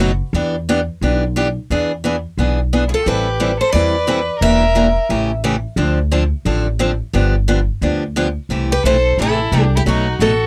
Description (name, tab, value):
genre	acoustic string swing (jazz manouche)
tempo	176 BPM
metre	4/4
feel	swing 60% on 8ths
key	C major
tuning	A4 = 441 Hz
part	picked steel-string acoustic guitar	accompaniment	0.0-10.3 s	B2 to A4	-20 LUFS	equal	none
part	upright bass	bass	0.0-10.5 s	E1 to E2	-21 LUFS	equal	none
part	picked steel-string acoustic guitar	melody	2.9-5.4, 8.7-10.5 s	F#4 to E5	-20 LUFS	equal	none
part	warm violin	second line	2.9-5.0, 8.7-10.5 s	D#4 to B4	-26 LUFS	equal	none
room	light reverb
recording	dry, close 1970s-style studio recording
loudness	-17 LUFS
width	mono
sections	0.0-8.5 A section; 8.5-10.5 B section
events	none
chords	0.3 Em7; 1.7 E7; 3.1 Am9; 4.4 Em7b5; 5.1 A7; 5.8 Dm7; 7.1 G7; 8.5 C6; 9.9 B7